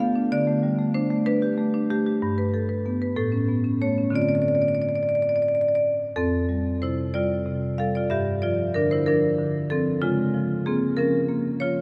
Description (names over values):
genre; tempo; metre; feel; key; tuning
classical, contemporary piece for solo marimba; 63 BPM (dotted quarters); 6/8; rubato; D dorian, F major from 6.2 s; A4 = 440 Hz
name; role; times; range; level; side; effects
marimba with medium hard mallets; solo; 0.0-11.8 s; F2 to F5; -24 LUFS; equal; none
room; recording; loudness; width
wet cathedral reverb, RT60 5.4 s; none; -24 LUFS; mono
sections
0.0-6.2 A section; 6.2-11.8 B section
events
none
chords
0.3 Asus2/D; 2.2 Gadd9; 3.2 Aadd9; 4.1 Dm7; 6.2 F69; 8.1 Gm7; 10.0 Db6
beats
| 0.31 1.26 | 2.21 3.16 | 4.15 5.16 | 6.17 7.14 | 8.11 9.07 | 10.02 10.97